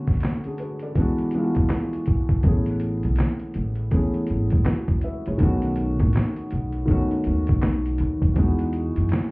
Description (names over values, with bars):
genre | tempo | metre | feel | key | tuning
lo-fi hip hop | 81 BPM | 4/4 | swing 62% on 16ths | E major | A4 = 440 Hz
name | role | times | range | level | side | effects
felt-muted upright piano | accompaniment | 0.0-9.3 s | D3 to E5 | -25 LUFS | equal | cassette tape
dusty soul sampler-style drum kit | drums | 0.1-9.3 s | handclaps, hi-hat, kick drum, snare drum | -21 LUFS | equal | none
upright bass | bass | 2.4-9.1 s | G#1 to F#2 | -24 LUFS | equal | none
room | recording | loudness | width
light reverb | heard muffled through a wall, club reverb, vinyl crackle, EQ | -20 LUFS | side -26 dB against mid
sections
0.0-9.3 A section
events
break 0.0-2.4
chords
0.0 Bm7; 1.0 E7; 2.4 Amaj9; 5.4 B7; 8.4 Emaj7